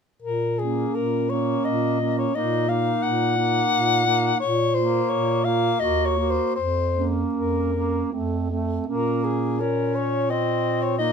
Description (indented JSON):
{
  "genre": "classical, lyrical piece for single-reed quartet",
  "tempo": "76-90 BPM",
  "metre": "3/4",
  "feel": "rubato",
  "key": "Bb minor",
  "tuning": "A4 = 439 Hz",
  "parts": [
    { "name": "warm soprano saxophone", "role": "melody", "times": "0.2-11.1 s", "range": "Ab4 to Gb5", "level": "-24 LUFS", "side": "left 7 dB", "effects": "none" },
    { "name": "mellow bass clarinet", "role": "bass", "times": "0.2-11.1 s", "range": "Eb2 to Bb2", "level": "-26 LUFS", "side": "right 2 dB", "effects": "none" },
    { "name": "mellow clarinet", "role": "second line", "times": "0.6-11.1 s", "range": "C4 to Gb4", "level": "-28 LUFS", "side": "right 14 dB", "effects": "none" },
    { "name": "warm tenor saxophone", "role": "accompaniment", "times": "0.6-11.1 s", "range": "A3 to Db4", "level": "-28 LUFS", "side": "left 1 dB", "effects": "none" }
  ],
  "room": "light reverb",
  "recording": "minimal, uncompressed stereo recording",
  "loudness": "-20 LUFS",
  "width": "side -6 dB against mid",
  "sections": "0.2-11.1 A section",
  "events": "none",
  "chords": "0.2 Bbm; 5.8 Ebm; 6.6 Bbm/F; 8.1 F; 8.9 Bbm",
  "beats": "| 0.22 0.94 1.65 | 2.35 3.03 3.71 | 4.40 5.10 5.81 | 6.56 7.35 8.12 | 8.88 9.60 10.31 | 10.98"
}